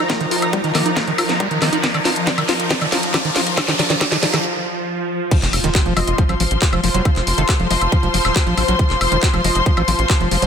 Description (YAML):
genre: psychedelic trance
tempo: 138 BPM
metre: 4/4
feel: straight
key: unclear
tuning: A4 = 440 Hz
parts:
  - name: resonant blip pluck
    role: second line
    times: 0.0-10.5 s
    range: A4 to Eb5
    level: -30 LUFS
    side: right 1 dB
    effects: phaser, sidechain pumping, high-pass filter, tape echo
  - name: swarming drone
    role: sustained chords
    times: 0.0-10.5 s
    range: F3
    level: -25 LUFS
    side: right 1 dB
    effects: built-in reverb, phaser, sidechain pumping
  - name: screaming distorted acid line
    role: riff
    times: 0.0-10.5 s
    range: Eb3 to Gb4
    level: -23 LUFS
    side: equal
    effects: distortion, chorus, auto-pan, sidechain pumping, dub echo
  - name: tight sequencer bass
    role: bass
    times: 0.0-10.5 s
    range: Eb1 to Bb1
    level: -22 LUFS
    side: equal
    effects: high-pass filter
  - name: riser and impact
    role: sound effects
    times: 0.0-7.1 s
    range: none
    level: -24 LUFS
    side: equal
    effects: none
  - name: rich symphonic string section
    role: texture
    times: 0.0-10.5 s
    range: Eb4 to C6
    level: -22 LUFS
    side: left 3 dB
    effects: sidechain pumping
  - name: electronic kick drum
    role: drums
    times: 0.1-10.2 s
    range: none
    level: -18 LUFS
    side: equal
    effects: high-pass filter on kick, high-pass filter on room
  - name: garage drum kit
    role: drums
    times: 0.1-10.5 s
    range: crash cymbal, handclaps, hi-hat, snare drum, woodblock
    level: -21 LUFS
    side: left 1 dB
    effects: none
room: light reverb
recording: none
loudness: -15 LUFS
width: side -7 dB against mid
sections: 0.0-5.3 A section; 5.3-10.5 B section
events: build-up 0.0-5.3; drum fill 0.0-4.4; riser 0.0-4.4; filter sweep on synth drone 0.0-5.3; break 4.4-5.3; drop 5.3-10.5; impact 5.3-7.1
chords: 0.0 Eb5; 5.3 F5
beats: | 0.10 0.53 0.97 1.40 | 1.84 2.27 2.71 3.14 | 3.58 4.01 4.45 4.88 | 5.31 5.75 6.18 6.62 | 7.05 7.49 7.92 8.36 | 8.79 9.23 9.66 10.10